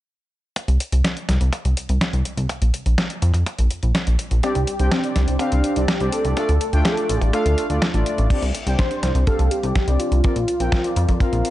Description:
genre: italo disco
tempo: 124 BPM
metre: 4/4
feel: straight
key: unclear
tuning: A4 = 440 Hz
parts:
  - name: detuned 8-bit digital drum machine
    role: drums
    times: 0.6-11.5 s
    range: crash cymbal, hi-hat, snare drum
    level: -26 LUFS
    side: equal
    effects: studio reverb
  - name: kick drum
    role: drums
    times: 0.6-11.3 s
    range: none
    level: -22 LUFS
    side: equal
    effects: high-pass filter on kick, studio reverb, high-pass filter on snare, high-pass filter on room
  - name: chorused synth bass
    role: bass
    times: 0.7-11.4 s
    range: A1 to F2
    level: -19 LUFS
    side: equal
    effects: none
  - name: wide unison lead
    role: melody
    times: 4.4-11.5 s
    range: C4 to C5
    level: -24 LUFS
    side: right 1 dB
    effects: cassette tape, digital delay
  - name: analog synth brass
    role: stabs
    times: 4.4-11.5 s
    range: A3 to G5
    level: -25 LUFS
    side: left 2 dB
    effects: chorus, digital delay
room: light reverb, small room reverb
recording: dark, warm production, nothing above 10.9 kHz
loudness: -18 LUFS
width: side -15 dB against mid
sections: 0.6-8.3 A section; 8.3-11.5 B section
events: none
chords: 0.6 N.C.; 2.5 Bb5; 4.4 Csus2; 6.4 Dm; 8.3 Csus2; 10.2 Bbadd9

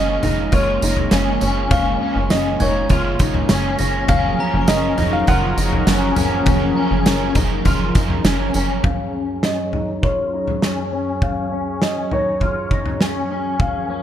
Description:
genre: dream pop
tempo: 101 BPM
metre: 4/4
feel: straight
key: unclear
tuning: A4 = 440 Hz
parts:
  - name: felt-muted upright piano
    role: melody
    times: 0.0-14.0 s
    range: Db5 to Gb5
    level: -24 LUFS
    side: equal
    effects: low-pass filter, digital delay
  - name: crunchy overdriven guitar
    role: accompaniment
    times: 0.0-8.9 s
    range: Gb2 to Bb4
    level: -27 LUFS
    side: right 5 dB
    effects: harmonic tremolo, analog chorus
  - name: warm analog pad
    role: sustained chords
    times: 0.0-14.0 s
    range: Gb2 to Db5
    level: -25 LUFS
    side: right 2 dB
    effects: chorus, low-pass filter
  - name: electric guitar at the edge of break-up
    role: arpeggios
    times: 0.0-14.0 s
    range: Db4 to F4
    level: -23 LUFS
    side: left 3 dB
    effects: ensemble chorus, low-pass filter, digital delay
  - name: plucky analog bass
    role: bass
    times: 0.0-8.8 s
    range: F1 to Gb1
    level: -22 LUFS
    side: equal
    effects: none
  - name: glockenspiel with hard plastic mallets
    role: texture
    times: 0.0-5.5 s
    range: Bb5 to Bb6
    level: -33 LUFS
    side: left 1 dB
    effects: digital delay
  - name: loose indie drum kit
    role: drums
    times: 0.2-13.7 s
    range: kick drum, snare drum, tambourine, toms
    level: -20 LUFS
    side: equal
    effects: none
room: moderate plate reverb, RT60 2.6 s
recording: bright 1980s-style digital production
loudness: -16 LUFS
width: side -10 dB against mid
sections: 0.0-8.8 A section; 8.8-14.0 B section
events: filter sweep 8.8-14.0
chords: 0.0 Bbm7; 8.8 Ebm11/Gb

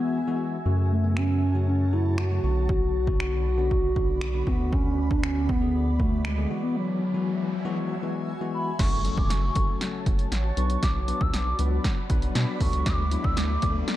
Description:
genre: dance-pop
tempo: 118 BPM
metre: 4/4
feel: straight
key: F# minor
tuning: A4 = 441 Hz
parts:
  - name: hollow clarinet-like synth lead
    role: melody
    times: 0.0-13.9 s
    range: F#3 to E6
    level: -28 LUFS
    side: equal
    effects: chorus, digital delay
  - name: bell-like tine electric piano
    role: accompaniment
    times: 0.0-14.0 s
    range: C#3 to B4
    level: -33 LUFS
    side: left 6 dB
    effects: sidechain pumping
  - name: granular cloud pad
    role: sustained chords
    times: 0.0-14.0 s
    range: F#4 to B5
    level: -37 LUFS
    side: right 1 dB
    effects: built-in reverb, sidechain pumping
  - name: round analog bass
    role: bass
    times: 0.7-13.8 s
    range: E1 to B2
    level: -26 LUFS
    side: equal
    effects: sidechain pumping
  - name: punchy analog drum machine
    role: drums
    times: 1.2-14.0 s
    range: crash cymbal, finger snaps, hi-hat, kick drum, snare drum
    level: -27 LUFS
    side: equal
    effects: none
  - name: riser and impact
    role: sound effects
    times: 6.1-14.0 s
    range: none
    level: -37 LUFS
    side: equal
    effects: none
room: light reverb, digital ambience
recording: dark, warm production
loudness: -23 LUFS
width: side -14 dB against mid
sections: 0.0-8.8 A section; 8.8-14.0 B section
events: riser 6.1-8.8, 8.9-14.0; break 6.8-8.8; build-up 8.8-14.0; drum fill 8.8-14.0; impact 8.8-10.8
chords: 0.0 Eadd9; 0.7 F#m; 2.4 Bm; 4.5 D6; 6.5 Eadd9; 8.8 F#m; 10.6 Bm; 12.6 D6

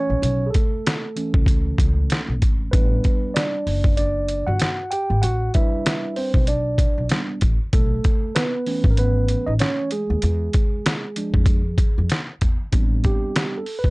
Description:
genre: hip hop, jazz-hop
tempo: 96 BPM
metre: 4/4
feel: swing 58% on 16ths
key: unclear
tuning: A4 = 441 Hz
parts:
  - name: mellow tine electric piano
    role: accompaniment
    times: 0.0-13.9 s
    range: E3 to G5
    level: -25 LUFS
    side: right 2 dB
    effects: none
  - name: upright bass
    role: bass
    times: 0.1-13.9 s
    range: F#1 to F2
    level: -22 LUFS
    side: equal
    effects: none
  - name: trip hop sampler-style drum kit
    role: drums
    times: 0.2-13.9 s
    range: hi-hat, kick drum, snare drum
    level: -20 LUFS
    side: equal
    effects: none
room: little or no reverb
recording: dry, gritty hardware recording, nothing above 10.8 kHz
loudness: -18 LUFS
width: side -24 dB against mid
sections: 0.0-12.7 A section; 12.7-13.9 B section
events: tine electric piano solo 0.0-12.7, 12.7-13.9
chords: 0.0 B9sus4; 2.7 A9sus4; 7.7 B9sus4; 10.2 E7b9; 12.7 Am11

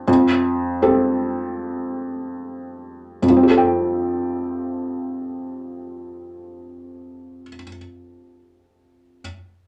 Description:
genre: classical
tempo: 70-83 BPM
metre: 4/4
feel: rubato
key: F major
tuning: A4 = 440 Hz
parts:
  - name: felt-muted upright piano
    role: accompaniment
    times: 0.0-9.2 s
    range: F2 to G5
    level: -22 LUFS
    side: equal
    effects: none
room: moderate club reverb, RT60 0.6 s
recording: none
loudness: -20 LUFS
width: mono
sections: 0.0-3.2 A section; 3.2-6.6 B section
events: slowing down 0.0-3.2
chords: 0.1 Fadd9

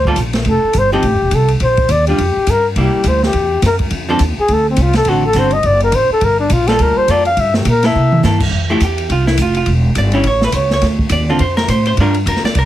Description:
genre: jazz, small-group swing and bop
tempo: 208 BPM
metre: 4/4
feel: swing 60% on 8ths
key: G minor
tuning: A4 = 440 Hz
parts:
  - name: breathy flugelhorn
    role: melody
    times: 0.0-8.2 s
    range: C4 to F5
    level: -14 LUFS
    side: left 2 dB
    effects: none
  - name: upright bass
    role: bass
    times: 0.0-12.7 s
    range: Eb1 to C3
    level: -15 LUFS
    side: right 1 dB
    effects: none
  - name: vintage hollow-body jazz guitar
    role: accompaniment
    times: 0.1-12.7 s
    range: D3 to D5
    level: -17 LUFS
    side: right 1 dB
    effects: none
  - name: open jazz drum kit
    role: drums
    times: 0.1-12.6 s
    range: crash cymbal, hi-hat, kick drum, ride cymbal, snare drum, toms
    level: -20 LUFS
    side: equal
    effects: none
room: light reverb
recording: heavily compressed radio sound, multiband compression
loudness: -11 LUFS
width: side -13 dB against mid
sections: 0.0-8.5 A section; 8.5-12.7 A section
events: flugelhorn solo 0.0-8.5; drum fill 8.0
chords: 0.5 F7; 1.6 Bb5; 2.8 C7; 3.9 F6; 5.1 D7; 6.2 Gm9; 7.4 Gm; 8.0 C6; 8.5 Fmaj7sus2; 9.7 Em7; 10.3 A; 10.8 Dm7; 12.0 Gm7

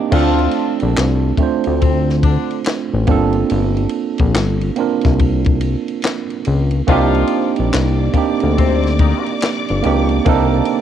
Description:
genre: R&B, neo-soul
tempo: 71 BPM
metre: 4/4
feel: swing 63% on 16ths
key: unclear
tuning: A4 = 440 Hz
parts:
  - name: tine electric piano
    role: accompaniment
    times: 0.0-10.8 s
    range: A3 to C5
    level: -18 LUFS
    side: right 8 dB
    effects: cassette tape
  - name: rich studio string section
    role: sustained chords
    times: 0.0-0.1, 6.9-10.8 s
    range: Bb3 to D6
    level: -26 LUFS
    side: left 4 dB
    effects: cassette tape
  - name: warm horn section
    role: stabs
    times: 0.1-9.3 s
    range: C3 to F4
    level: -22 LUFS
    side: left 12 dB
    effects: cassette tape
  - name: fat analog bass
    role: bass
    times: 0.1-10.6 s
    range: G1 to D2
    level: -16 LUFS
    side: left 2 dB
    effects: none
  - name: compact cocktail drum kit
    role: drums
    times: 0.1-10.8 s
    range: crash cymbal, handclaps, kick drum, ride cymbal, snare drum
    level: -18 LUFS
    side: left 2 dB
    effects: cassette tape
room: light reverb, small room ambience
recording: home recording on cassette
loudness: -14 LUFS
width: side -10 dB against mid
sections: 0.1-10.8 A section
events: none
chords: 0.1 Dm7; 3.1 Gm11; 6.9 Cm9

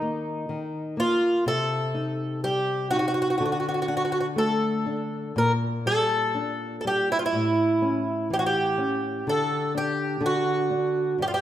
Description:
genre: fado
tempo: 62 BPM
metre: 2/4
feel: rubato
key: unclear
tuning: A4 = 440 Hz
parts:
  - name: fingerpicked twelve-string acoustic guitar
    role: melody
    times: 0.0-11.4 s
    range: Eb4 to Bb4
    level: -24 LUFS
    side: right 1 dB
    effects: none
  - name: nylon-string guitar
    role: accompaniment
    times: 0.0-11.4 s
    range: G2 to Eb4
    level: -28 LUFS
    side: left 2 dB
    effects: none
room: wet recital hall reverb, RT60 1.4 s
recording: none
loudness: -23 LUFS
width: side -11 dB against mid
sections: 0.0-11.4 A section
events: none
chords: 0.0 Eb5; 1.5 Cm; 3.4 D5; 5.3 Bb6; 7.3 A7; 9.3 N.C.

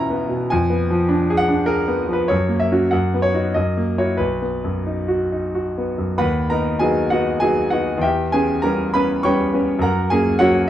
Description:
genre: classical, romantic character piece for solo piano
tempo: 89-104 BPM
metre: 3/4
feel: rubato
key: B major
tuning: A4 = 440 Hz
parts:
  - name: bright grand piano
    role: solo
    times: 0.0-10.7 s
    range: B1 to C#6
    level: -17 LUFS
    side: equal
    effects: none
room: moderate stone room reverb, RT60 1.3 s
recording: dark, warm production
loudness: -17 LUFS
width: side -12 dB against mid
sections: 0.0-6.2 A section; 6.2-10.7 B section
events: none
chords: 0.0 C#m7b5/E; 0.5 Fdim7; 2.3 F#; 2.9 B/F#; 3.6 F#7; 4.2 B; 6.2 B/D#; 8.0 C#m7b5/E; 9.8 F#

